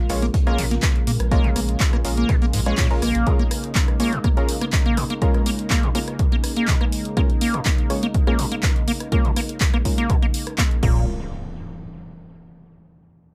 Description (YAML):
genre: acid house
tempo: 123 BPM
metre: 4/4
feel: straight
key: Bb minor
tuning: A4 = 440 Hz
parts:
  - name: warm analog pad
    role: sustained chords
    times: 0.0-11.1 s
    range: Db3 to F4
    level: -33 LUFS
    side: equal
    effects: chorus, sidechain pumping
  - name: band-passed chord stab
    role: stabs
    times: 0.1-11.0 s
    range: Ab3 to Db5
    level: -32 LUFS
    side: equal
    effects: chorus, cassette tape, digital delay
  - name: warm sub bass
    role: bass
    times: 0.1-3.2, 10.8-11.1 s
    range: Bb1 to Bb2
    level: -26 LUFS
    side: equal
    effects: sidechain pumping
  - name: punchy analog drum machine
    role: drums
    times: 0.1-10.9 s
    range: crash cymbal, handclaps, hi-hat, rim click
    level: -30 LUFS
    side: equal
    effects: none
  - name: vintage drum kit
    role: drums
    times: 0.1-3.1 s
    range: hi-hat, snare drum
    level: -43 LUFS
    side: equal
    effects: none
  - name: acid bass, square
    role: riff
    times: 0.2-11.1 s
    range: Ab2 to Bb3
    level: -28 LUFS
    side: equal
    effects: overdrive, analog chorus, digital delay
  - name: electronic kick drum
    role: drums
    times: 0.3-10.9 s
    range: none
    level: -22 LUFS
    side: equal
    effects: none
  - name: impact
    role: sound effects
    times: 10.8-12.8 s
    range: none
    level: -36 LUFS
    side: equal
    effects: none
room: light reverb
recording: none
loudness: -20 LUFS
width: mono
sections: 0.0-11.1 A section; 11.1-13.0 B section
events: filter sweep on synth stab 0.0-11.1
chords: 0.0 Bbm7; 11.1 N.C.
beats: 0.34 0.83 | 1.32 1.80 2.29 2.78 | 3.27 3.75 4.24 4.73 | 5.22 5.71 6.19 6.68 | 7.17 7.66 8.14 8.63 | 9.12 9.61 10.10 10.58 | 11.07 11.56 12.05 12.54